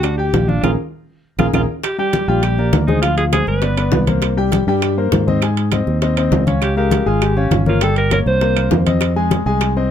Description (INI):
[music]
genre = Afro-Cuban jazz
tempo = 200 BPM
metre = 4/4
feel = straight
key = unclear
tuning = A4 = 437 Hz
[part]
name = clear alto saxophone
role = melody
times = 0.0-4.0, 6.6-8.8 s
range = D4 to C5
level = -21 LUFS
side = right 2 dB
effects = none
[part]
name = clear concert grand piano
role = accompaniment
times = 0.0-9.9 s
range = F3 to Ab5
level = -20 LUFS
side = left 4 dB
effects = none
[part]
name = fingered electric bass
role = bass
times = 0.0-9.9 s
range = G1 to Ab2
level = -18 LUFS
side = right 1 dB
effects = none
[part]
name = bongos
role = percussion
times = 0.0-9.8 s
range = none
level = -25 LUFS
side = left 6 dB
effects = none
[part]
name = claves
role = percussion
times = 0.0-9.8 s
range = none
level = -28 LUFS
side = right 12 dB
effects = none
[part]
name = congas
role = percussion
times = 0.0-9.9 s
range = none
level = -22 LUFS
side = left 2 dB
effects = none
[part]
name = timbales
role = percussion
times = 0.0-9.8 s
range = none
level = -25 LUFS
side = right 11 dB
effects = none
[sound]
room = little or no reverb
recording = close, detailed microphones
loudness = -14 LUFS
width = side -9 dB against mid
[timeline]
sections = 0.0-1.8 A section; 1.8-9.9 B section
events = drum fill 0.6-1.8; band accent 0.6-1.8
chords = 0.0 G5; 0.6 Bb5; 1.8 Bb13; 3.0 Dm7b5; 3.6 G; 4.2 C7(no3); 5.4 Ab; 6.6 Db6; 7.8 Gdim; 8.4 Cm7; 9.0 Fm7